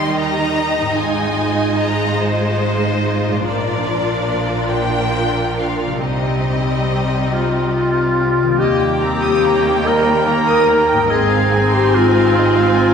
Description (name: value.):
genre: cinematic, emotional film score for orchestra.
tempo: 48 BPM (dotted quarters).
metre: 6/8.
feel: rubato.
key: Eb major.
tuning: A4 = 440 Hz.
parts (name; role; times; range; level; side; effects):
rich studio violin section; melody; 0.0-12.9 s; C5 to C6; -24 LUFS; left 3 dB; none.
warm studio violin section; second line; 0.0-12.9 s; Eb4 to Eb6; -23 LUFS; left 2 dB; none.
rich studio viola section; accompaniment; 0.0-12.9 s; F3 to Eb4; -22 LUFS; right 3 dB; none.
concert harp; arpeggios; 0.0-12.9 s; Ab2 to G4; -25 LUFS; left 4 dB; none.
rich chamber double bass section; bass; 0.0-12.9 s; Ab1 to Eb2; -24 LUFS; right 1 dB; none.
warm studio cello section; bass; 0.0-12.9 s; Eb2 to Eb3; -25 LUFS; right 4 dB; none.
warm oboe; second line; 7.3-12.9 s; F4 to Bb4; -20 LUFS; right 2 dB; none.
mellow French horn section; sustained chords; 7.3-12.9 s; F4 to Bb4; -16 LUFS; left 2 dB; none.
clear clarinet; second line; 8.6-12.9 s; G3 to Eb4; -23 LUFS; left 2 dB; none.
room: wet church reverb, RT60 3.0 s.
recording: recorded in a church or concert hall.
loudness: -14 LUFS.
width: side -7 dB against mid.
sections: 0.0-8.6 A section; 8.6-12.9 A section.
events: none.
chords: 0.0 Eb; 1.0 Ab6; 3.5 Bb; 6.0 Cm; 8.6 Eb; 11.1 Ab6.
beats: | 0.99 2.22 | 3.46 4.76 | 6.05 7.33 | 8.61 9.86 | 11.11 12.36.